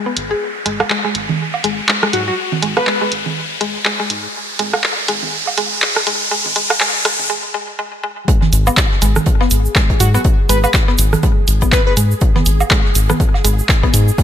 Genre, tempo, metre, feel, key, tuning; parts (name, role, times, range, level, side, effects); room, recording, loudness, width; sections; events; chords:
minimal techno; 122 BPM; 4/4; swing 58% on 16ths; G# minor; A4 = 440 Hz
riser; sound effects; 0.0-7.3 s; -20 LUFS; equal
mallet-like synth pluck; riff; 0.1-14.2 s; G#3 to G#4; -23 LUFS; left 1 dB; chorus, sidechain pumping, dub echo
round analog bass; bass; 0.2-14.1 s; G#1 to G#2; -16 LUFS; left 1 dB; sidechain pumping
punchy analog drum machine; drums; 0.2-14.1 s; handclaps, hi-hat; -19 LUFS; equal
electronic rim click, woodblock and congas; percussion; 0.8-13.4 s; -20 LUFS; right 4 dB; ping-pong delay
plucky unison lead; melody; 2.1-3.1, 10.0-11.9 s; F#4 to B4; -20 LUFS; left 2 dB; ping-pong delay
electronic kick drum; drums; 8.3-14.2 s; -14 LUFS; left 1 dB
natural country drum kit; drums; 8.3-14.2 s; hi-hat, snare drum; -28 LUFS; right 2 dB; high-pass filter on hats, high-pass filter on snare, high-pass filter on room
egg shaker; percussion; 8.3-14.2 s; -23 LUFS; right 5 dB
swarming drone; texture; 8.7-14.2 s; G#4; -27 LUFS; right 1 dB; built-in reverb, sidechain pumping
light reverb; high-pass filter; -13 LUFS; side -10 dB against mid
0.0-8.3 A section; 8.3-14.2 B section
build-up 0.0-8.3; riser 0.0-7.3; filter sweep on synth arpeggio sound 0.0-8.3; filter sweep 0.0-8.3; break 7.3-8.3; drop 8.3-14.2